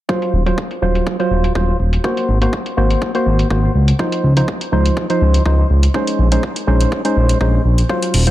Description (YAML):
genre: deep house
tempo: 123 BPM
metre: 4/4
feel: swing 54% on 16ths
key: Eb dorian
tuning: A4 = 442 Hz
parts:
  - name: percussive organ stab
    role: stabs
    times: 0.1-8.3 s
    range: F3 to C5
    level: -18 LUFS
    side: equal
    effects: chorus, sidechain pumping, tape echo
  - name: electronic kick drum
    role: drums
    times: 0.1-8.0 s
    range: none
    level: -24 LUFS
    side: equal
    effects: overdrive, high-pass filter on kick, high-pass filter on room
  - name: electronic hi-hat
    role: drums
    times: 0.2-8.3 s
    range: none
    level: -26 LUFS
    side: equal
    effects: overdrive, low-pass filter on hats, low-pass filter on room
  - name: smooth synth bass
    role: bass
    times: 0.3-8.3 s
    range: Eb1 to Db2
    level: -14 LUFS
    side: equal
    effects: sidechain pumping
room: digital ambience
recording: dense, heavily limited modern master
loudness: -13 LUFS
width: side -14 dB against mid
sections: 0.1-8.3 A section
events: filter sweep on analog synth bass 0.1-8.3; filter sweep on synth stab 0.1-8.3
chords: 0.1 Ebm69; 2.0 Ab9; 3.7 Dbmaj9; 5.9 Bbm11